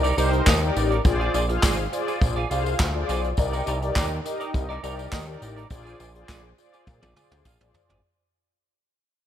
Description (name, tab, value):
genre	early-eighties boogie funk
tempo	103 BPM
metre	4/4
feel	straight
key	unclear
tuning	A4 = 440 Hz
part	mellow synth brass	accompaniment	0.0-8.0 s	Eb4 to F5	-27 LUFS	left 2 dB	chorus, phaser
part	semi-hollow electric guitar	riff	0.0-8.0 s	Eb4 to F5	-31 LUFS	right 4 dB	analog chorus
part	fat analog bass	bass	0.0-8.0 s	Ab1 to Bb2	-27 LUFS	equal	none
part	vintage brush drum kit	drums	0.0-8.0 s	handclaps, hi-hat, kick drum, snare drum, toms	-24 LUFS	equal	none
part	tambourine	percussion	0.0-7.9 s	none	-38 LUFS	left 10 dB	none
room	light reverb, small room reverb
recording	none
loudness	-21 LUFS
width	side -10 dB against mid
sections	0.0-8.0 A section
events	fade-out 0.0-8.0; drum fill 6.9-8.0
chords	0.0 Cm9; 1.0 Bb7; 3.4 Cm9; 5.7 Bb7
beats	0.46 | 1.05 1.63 2.21 2.79 | 3.38 3.96 4.54 5.12 | 5.71 6.29 6.87 7.45